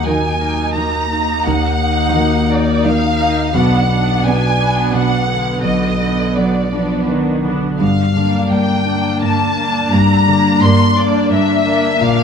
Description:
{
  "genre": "cinematic, emotional film score for orchestra",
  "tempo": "86 BPM",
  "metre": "3/4",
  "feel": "rubato",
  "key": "unclear",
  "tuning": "A4 = 440 Hz",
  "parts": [
    { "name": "rich studio violin section", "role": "melody", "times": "0.0-12.2 s", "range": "D5 to C6", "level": "-18 LUFS", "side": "left 2 dB", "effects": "none" },
    { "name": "dark concert grand piano", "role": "accompaniment", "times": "0.0-12.2 s", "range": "B1 to F#5", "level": "-18 LUFS", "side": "left 1 dB", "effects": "none" },
    { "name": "warm studio viola section", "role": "accompaniment", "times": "0.0-12.2 s", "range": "D3 to Eb4", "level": "-20 LUFS", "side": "right 4 dB", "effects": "none" },
    { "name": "concert harp", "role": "arpeggios", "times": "0.0-12.2 s", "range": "G2 to B4", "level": "-22 LUFS", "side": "left 8 dB", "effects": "none" },
    { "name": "warm studio cello section", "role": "bass", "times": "0.1-12.2 s", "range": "G2 to F#3", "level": "-20 LUFS", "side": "right 3 dB", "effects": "none" }
  ],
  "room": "moderate scoring stage reverb, RT60 1.9 s",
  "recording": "close, detailed microphones",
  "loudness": "-12 LUFS",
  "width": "side -7 dB against mid",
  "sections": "0.0-12.2 A section",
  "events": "none",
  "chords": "0.0 Ebm; 3.5 Bm; 7.8 Gm"
}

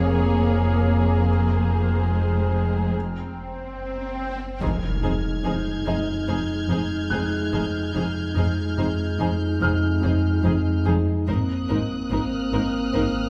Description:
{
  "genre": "cinematic, suspense film score",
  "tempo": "72 BPM",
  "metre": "4/4",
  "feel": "straight",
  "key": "F phrygian",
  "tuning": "A4 = 442 Hz",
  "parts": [
    { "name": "muted studio violin section", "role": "melody", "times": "0.0-13.0 s", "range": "C5 to Db5", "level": "-40 LUFS", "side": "equal", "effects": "none" },
    { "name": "muted studio violin section", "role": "second line", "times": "0.0-13.0 s", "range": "Ab4 to Bb4", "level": "-35 LUFS", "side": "equal", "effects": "none" },
    { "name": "muted studio viola section", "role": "accompaniment", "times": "0.0-13.0 s", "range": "Ab3 to Eb4", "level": "-32 LUFS", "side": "equal", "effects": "none" },
    { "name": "muted studio cello section", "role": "bass", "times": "0.0-13.0 s", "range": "F2 to Ab2", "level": "-31 LUFS", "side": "equal", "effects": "none" },
    { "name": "muted studio double bass section", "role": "bass", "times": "0.0-13.0 s", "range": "F1 to Ab1", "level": "-32 LUFS", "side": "equal", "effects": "none" },
    { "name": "deep rumbling drone", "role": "drone", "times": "0.0-13.3 s", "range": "Gb1 to F2", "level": "-28 LUFS", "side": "equal", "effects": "built-in reverb" },
    { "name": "clear baby grand piano", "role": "texture", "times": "0.0-13.3 s", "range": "Eb5 to Bb6", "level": "-37 LUFS", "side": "equal", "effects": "none" },
    { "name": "muted studio violin section", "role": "texture", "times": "0.0-13.3 s", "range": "Bb5 to Ab6", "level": "-38 LUFS", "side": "equal", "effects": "none" },
    { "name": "swell and impact", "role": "sound effects", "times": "2.9-7.9 s", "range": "none", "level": "-34 LUFS", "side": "equal", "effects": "none" },
    { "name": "mellow French horn section", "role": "sustained chords", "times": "4.6-13.3 s", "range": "Ab3 to Eb4", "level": "-29 LUFS", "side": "equal", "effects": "none" }
  ],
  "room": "moderate scoring stage reverb, RT60 1.6 s",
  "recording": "none",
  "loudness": "-23 LUFS",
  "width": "mono",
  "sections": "0.0-4.6 A section; 4.6-13.3 B section",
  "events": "swell 2.9-4.6; break 2.9-4.6; impact 4.6-7.9",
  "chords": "0.0 Bbm7/F; 1.3 Fm; 2.9 Gb; 4.6 Fm7; 11.3 Abadd9"
}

